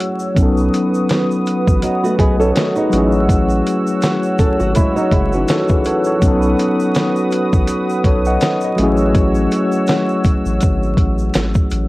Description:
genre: lo-fi hip hop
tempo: 82 BPM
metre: 4/4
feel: swing 57% on 16ths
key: unclear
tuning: A4 = 443 Hz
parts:
  - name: bright tine electric piano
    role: accompaniment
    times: 0.0-11.9 s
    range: F#3 to F#5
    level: -17 LUFS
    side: left 1 dB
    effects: medium stereo tremolo, cassette tape, low-pass filter
  - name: warm analog pad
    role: sustained chords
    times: 0.0-11.9 s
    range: F#4 to E6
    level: -22 LUFS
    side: right 1 dB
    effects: chorus, low-pass filter
  - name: dusty soul sampler-style drum kit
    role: drums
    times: 0.0-11.9 s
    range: hi-hat, kick drum, snare drum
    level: -16 LUFS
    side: equal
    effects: none
  - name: egg shaker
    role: percussion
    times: 0.2-11.9 s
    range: none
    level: -39 LUFS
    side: right 3 dB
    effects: none
  - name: saturated sub bass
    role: bass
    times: 0.4-11.9 s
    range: F#1 to B1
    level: -19 LUFS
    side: equal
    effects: transformer saturation
  - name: flamenco guitar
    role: second line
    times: 1.8-6.2 s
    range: E3 to A4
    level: -19 LUFS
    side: right 2 dB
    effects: low-pass filter, analog delay
room: little or no reverb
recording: dry, gritty hardware recording, vinyl crackle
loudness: -13 LUFS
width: side -19 dB against mid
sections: 0.4-11.9 A section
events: none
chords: 0.4 B7; 2.9 F#m7/A; 6.2 B7; 8.8 F#m7/A

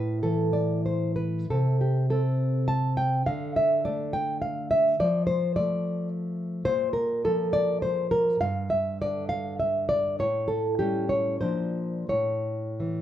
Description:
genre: romantic piece for solo classical guitar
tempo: 84-109 BPM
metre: 3/4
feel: rubato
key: unclear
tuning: A4 = 440 Hz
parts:
  - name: nylon-string guitar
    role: solo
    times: 0.0-13.0 s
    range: G2 to A5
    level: -24 LUFS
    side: equal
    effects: none
room: light reverb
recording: band playing live in one room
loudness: -24 LUFS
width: side -11 dB against mid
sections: 0.0-13.0 A section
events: none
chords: 0.0 A5; 1.5 N.C.; 3.3 D5; 5.0 Dm/F; 6.7 Bb5; 8.4 Em7/G; 10.2 A7; 11.4 Bb; 12.1 A

